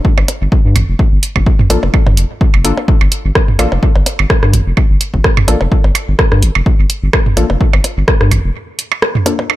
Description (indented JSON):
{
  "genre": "minimal techno",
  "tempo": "127 BPM",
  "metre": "4/4",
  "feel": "swing 55% on 16ths",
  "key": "G minor",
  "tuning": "A4 = 441 Hz",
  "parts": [
    { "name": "electronic kick drum", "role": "drums", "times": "0.0-8.2 s", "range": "none", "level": "-12 LUFS", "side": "equal", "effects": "none" },
    { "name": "saturated sub bass", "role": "bass", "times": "0.2-8.5 s", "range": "F1 to G2", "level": "-13 LUFS", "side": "equal", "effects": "tube saturation, sidechain pumping" },
    { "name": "electronic percussion blips and toms", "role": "percussion", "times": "0.2-9.6 s", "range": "none", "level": "-17 LUFS", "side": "right 3 dB", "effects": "dub echo" },
    { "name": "punchy analog drum machine", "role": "drums", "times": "0.3-9.4 s", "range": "hi-hat, rim click", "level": "-16 LUFS", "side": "equal", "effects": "none" },
    { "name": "filtered dub chord stab", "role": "stabs", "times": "1.7-9.3 s", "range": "Bb3 to A4", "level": "-20 LUFS", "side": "left 3 dB", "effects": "chorus, dub echo" }
  ],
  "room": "digital ambience",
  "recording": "none",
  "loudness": "-10 LUFS",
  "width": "side -15 dB against mid",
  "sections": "0.0-9.6 A section",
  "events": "break 8.6-9.6",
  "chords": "0.0 Gm7"
}